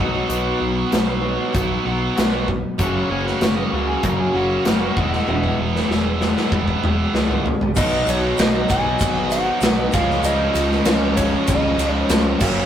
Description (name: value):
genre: classic rock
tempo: 96 BPM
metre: 4/4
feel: straight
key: unclear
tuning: A4 = 440 Hz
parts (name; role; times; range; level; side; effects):
- picked twelve-string acoustic guitar; accompaniment; 0.0-12.7 s; F#2 to D#5; -30 LUFS; left 1 dB; none
- crunchy overdriven guitar; riff; 0.0-12.7 s; F#2 to D#4; -26 LUFS; left 4 dB; none
- tight distorted guitar; riff; 0.0-12.7 s; F#2 to F#4; -23 LUFS; right 3 dB; distortion
- growling picked electric bass; bass; 0.0-12.7 s; E1 to F#2; -26 LUFS; equal; overdrive
- big rock drum kit; drums; 0.3-12.6 s; crash cymbal, hi-hat, kick drum, ride cymbal, snare drum, toms; -21 LUFS; equal; none
- octave-fuzz lead guitar; second line; 2.8-5.6 s; F#4 to G#5; -28 LUFS; left 2 dB; distortion
- electric slide guitar; melody; 7.8-12.1 s; C#5 to G#5; -23 LUFS; equal; none
- tube shaker; percussion; 7.8-12.6 s; none; -37 LUFS; left 5 dB; none
room: moderate small room reverb, RT60 0.5 s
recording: rough rehearsal-room recording, warm saturation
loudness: -17 LUFS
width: side -9 dB against mid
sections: 0.0-7.8 A section; 7.8-12.7 B section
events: drum fill 5.3-7.8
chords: 0.0 B; 2.8 F#; 5.0 E; 7.8 B; 9.9 C#add9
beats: | 0.30 0.92 1.54 2.17 | 2.79 3.41 4.03 4.66 | 5.28 5.90 6.52 7.14 | 7.76 8.38 9.01 9.62 | 10.24 10.86 11.48 12.10